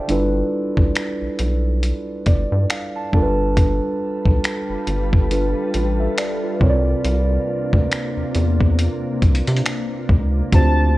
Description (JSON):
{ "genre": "contemporary R&B", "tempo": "69 BPM", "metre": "4/4", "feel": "swing 58% on 16ths", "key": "unclear", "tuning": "A4 = 440 Hz", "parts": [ { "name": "muted felt-like synth keys", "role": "accompaniment", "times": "0.0-11.0 s", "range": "C3 to A5", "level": "-22 LUFS", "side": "right 1 dB", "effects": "chorus" }, { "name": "rubbery square bass", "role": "bass", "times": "0.1-11.0 s", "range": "G1 to C3", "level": "-20 LUFS", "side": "equal", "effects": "none" }, { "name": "dusty soul sampler-style drum kit", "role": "drums", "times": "0.1-10.8 s", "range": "finger snaps, hi-hat, kick drum", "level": "-18 LUFS", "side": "equal", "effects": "none" }, { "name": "glassy FM pad", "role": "sustained chords", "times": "4.1-11.0 s", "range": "C3 to B4", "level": "-27 LUFS", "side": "left 2 dB", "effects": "ensemble chorus, built-in reverb, sidechain pumping" }, { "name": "warm velvety synth lead", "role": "melody", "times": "10.5-11.0 s", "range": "A5", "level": "-21 LUFS", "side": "left 1 dB", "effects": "chorus" } ], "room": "light reverb", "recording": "worn, warbling old tape, cassette tape, warbly pitch drift", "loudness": "-17 LUFS", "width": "side -18 dB against mid", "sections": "0.0-10.5 A section", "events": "synth keys fill 1.8-3.6", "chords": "0.1 G13; 3.1 G9; 6.6 C9sus4" }